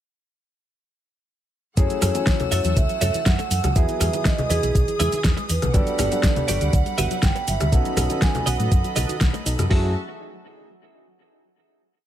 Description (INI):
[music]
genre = nu-disco, nu disco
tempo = 121 BPM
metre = 4/4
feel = straight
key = F# dorian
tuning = A4 = 438 Hz
[part]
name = vibraphone with medium mallets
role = melody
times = 1.8-9.2 s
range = G#4 to G#5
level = -27 LUFS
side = right 4 dB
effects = tape echo
[part]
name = dark concert grand piano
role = accompaniment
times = 1.8-9.9 s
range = F#3 to G#5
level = -31 LUFS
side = left 2 dB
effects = sidechain pumping
[part]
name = rich chamber string section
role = sustained chords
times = 1.8-9.9 s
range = G3 to E6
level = -34 LUFS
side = left 2 dB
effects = sidechain pumping
[part]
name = soft round pluck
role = arpeggios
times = 1.8-9.9 s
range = D#3 to D#4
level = -33 LUFS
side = left 3 dB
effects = chorus, sidechain pumping, tape echo
[part]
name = fingered electric bass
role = bass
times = 1.8-9.9 s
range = G1 to A2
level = -24 LUFS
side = equal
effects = none
[part]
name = dusty soul sampler-style drum kit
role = drums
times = 1.8-9.8 s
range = hi-hat, kick drum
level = -20 LUFS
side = equal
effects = none
[part]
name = pop drum kit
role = drums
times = 1.8-9.7 s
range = hi-hat, rim click, shaker, snare drum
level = -26 LUFS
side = equal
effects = overdrive
[part]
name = cabasa and congas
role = percussion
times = 1.8-9.7 s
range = none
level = -30 LUFS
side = left 1 dB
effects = none
[part]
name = clean electric guitar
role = riff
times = 2.0-9.9 s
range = E4 to E5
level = -29 LUFS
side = right 3 dB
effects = ensemble chorus
[sound]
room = little or no reverb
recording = none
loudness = -18 LUFS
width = side -11 dB against mid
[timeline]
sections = 1.8-9.7 drop; 9.7-11.7 final chord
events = drop 1.8-9.7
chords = 1.8 F#m7; 3.8 Emaj7; 5.7 Gmaj7; 7.7 B7; 9.7 F#m7